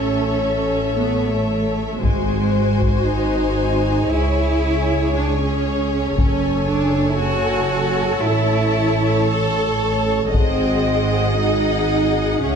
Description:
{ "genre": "cinematic, epic orchestral film score", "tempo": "116 BPM", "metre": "4/4", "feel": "straight", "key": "unclear", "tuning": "A4 = 440 Hz", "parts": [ { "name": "rich chamber violin section", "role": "melody", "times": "0.0-12.6 s", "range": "E5 to A5", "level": "-30 LUFS", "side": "left 3 dB", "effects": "none" }, { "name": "rich studio violin section", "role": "second line", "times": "0.0-12.6 s", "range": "B#4 to D#5", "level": "-27 LUFS", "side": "left 2 dB", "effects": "none" }, { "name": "warm symphonic viola section", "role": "accompaniment", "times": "0.0-12.6 s", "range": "F#4 to A4", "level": "-26 LUFS", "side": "right 1 dB", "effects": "none" }, { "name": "dark French horn section", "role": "sustained chords", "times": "0.0-12.6 s", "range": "G#4 to E5", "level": "-25 LUFS", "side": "left 5 dB", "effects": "none" }, { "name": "clear symphonic double bass section", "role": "bass", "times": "0.0-12.6 s", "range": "F#1 to C#2", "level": "-22 LUFS", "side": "right 2 dB", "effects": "none" }, { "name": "rich studio cello section", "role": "bass", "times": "0.0-12.6 s", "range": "G#3 to A4", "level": "-22 LUFS", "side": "right 2 dB", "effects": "none" }, { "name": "taiko ensemble", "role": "drums", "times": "2.0-3.1, 6.2-7.2, 10.3-11.3 s", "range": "none", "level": "-20 LUFS", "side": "left 1 dB", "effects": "none" } ], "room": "wet recital hall reverb, RT60 1.5 s", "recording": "dark, warm production", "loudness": "-16 LUFS", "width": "side -6 dB against mid", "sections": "0.0-12.6 A section", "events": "none", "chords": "0.0 A; 2.0 G#7; 4.1 C#m; 6.2 F#madd9; 8.2 A; 10.3 G#7", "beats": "0.48 1.00 1.52 | 2.04 2.56 3.08 3.60 | 4.12 4.63 5.15 5.66 | 6.18 6.70 7.21 7.73 | 8.25 8.77 9.30 9.82 | 10.35 10.87 11.39 11.91 | 12.43" }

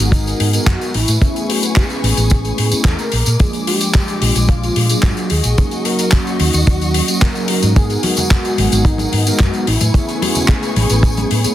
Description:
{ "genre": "nu-disco, nu disco", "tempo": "110 BPM", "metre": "4/4", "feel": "straight", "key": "G# minor", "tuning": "A4 = 439 Hz", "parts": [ { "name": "wide unison lead", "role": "melody", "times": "0.0-11.5 s", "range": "D#4 to A#4", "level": "-23 LUFS", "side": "right 1 dB", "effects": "analog delay" }, { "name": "mellow synth brass", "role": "accompaniment", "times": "0.0-11.5 s", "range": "E#3 to A#4", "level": "-21 LUFS", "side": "equal", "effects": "chorus, slapback echo" }, { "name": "warm studio string section", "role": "sustained chords", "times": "0.0-11.5 s", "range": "G#3 to D6", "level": "-28 LUFS", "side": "left 3 dB", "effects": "sidechain pumping" }, { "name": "hollow-body short-scale fingered electric bass", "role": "bass", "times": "0.0-11.5 s", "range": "G#1 to A#2", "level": "-16 LUFS", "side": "equal", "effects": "none" }, { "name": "damped 70s drum kit", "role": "drums", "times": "0.0-11.5 s", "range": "handclaps, hi-hat, tambourine", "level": "-20 LUFS", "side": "left 2 dB", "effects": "studio reverb" }, { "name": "kick drum", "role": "drums", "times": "0.1-11.1 s", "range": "none", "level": "-13 LUFS", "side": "equal", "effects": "studio reverb" }, { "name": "congas", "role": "percussion", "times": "8.0-11.3 s", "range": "none", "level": "-25 LUFS", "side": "left 2 dB", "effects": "none" } ], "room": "small room ambience", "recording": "dense, heavily limited modern master", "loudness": "-13 LUFS", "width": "side -13 dB against mid", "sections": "0.0-11.5 A section", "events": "none", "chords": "0.0 G#m7; 0.9 Amaj9; 3.1 A#7b13; 5.3 D#m7; 7.8 G#m7; 9.7 Amaj9", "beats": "0.13 0.67 | 1.22 1.76 2.31 2.85 | 3.40 3.94 4.49 5.04 | 5.58 6.13 6.67 7.22 | 7.76 8.31 8.85 9.40 | 9.95 10.49 11.04" }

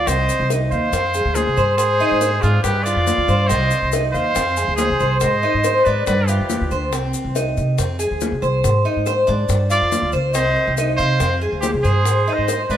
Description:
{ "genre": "latin, Cuban son and guajira", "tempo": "140 BPM", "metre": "4/4", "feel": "straight", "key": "C harmonic minor", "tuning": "A4 = 440 Hz", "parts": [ { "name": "clear trumpet", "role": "melody", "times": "0.0-6.7, 9.7-12.8 s", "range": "F4 to D5", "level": "-21 LUFS", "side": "right 2 dB", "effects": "none" }, { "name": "breathy bright jazz flute", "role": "second line", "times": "0.0-6.7, 9.7-12.8 s", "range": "Ab4 to F5", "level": "-24 LUFS", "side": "left 2 dB", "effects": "none" }, { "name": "Cuban tres", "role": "arpeggios", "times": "0.0-12.8 s", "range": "C4 to C5", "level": "-21 LUFS", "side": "equal", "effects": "none" }, { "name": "upright bass", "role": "bass", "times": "0.0-12.8 s", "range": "C2 to C3", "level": "-20 LUFS", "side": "equal", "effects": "none" }, { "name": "bongos", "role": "percussion", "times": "0.1-12.8 s", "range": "none", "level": "-28 LUFS", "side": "left 3 dB", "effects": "none" }, { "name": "maracas", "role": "percussion", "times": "0.1-12.8 s", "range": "none", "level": "-32 LUFS", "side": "left 6 dB", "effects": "none" } ], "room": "moderate plate reverb, RT60 2.6 s", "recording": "heard from further back in the room", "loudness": "-16 LUFS", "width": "side -10 dB against mid", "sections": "0.1-12.8 A section", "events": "none", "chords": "0.1 Cm; 0.9 Fm; 1.8 Ab; 2.6 G5; 3.5 Cm; 4.4 Fm; 5.2 Ab; 6.1 G7; 6.9 Cm; 7.8 Fm; 8.6 Ab; 9.5 G5; 10.3 Cm; 11.2 Fm; 12.1 Ab", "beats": "| 0.08 0.51 0.93 1.36 | 1.79 2.22 2.65 3.07 | 3.50 3.93 4.36 4.78 | 5.21 5.64 6.07 6.50 | 6.92 7.35 7.78 8.21 | 8.64 9.06 9.49 9.92 | 10.35 10.78 11.20 11.63 | 12.06 12.48" }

